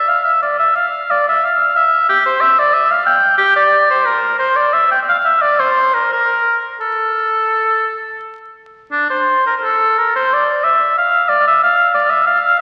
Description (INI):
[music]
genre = classical, baroque-style fantasia for unaccompanied oboe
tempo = 88 BPM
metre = 4/4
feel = uneven beats, rubato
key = D minor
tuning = A4 = 440 Hz
[part]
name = clear oboe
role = solo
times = 0.0-12.6 s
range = D4 to G5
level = -14 LUFS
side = equal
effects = none
[sound]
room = wet concert hall reverb, RT60 2.2 s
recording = very old 78 rpm record, vinyl crackle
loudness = -14 LUFS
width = mono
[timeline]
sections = 0.0-12.6 A section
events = none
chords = none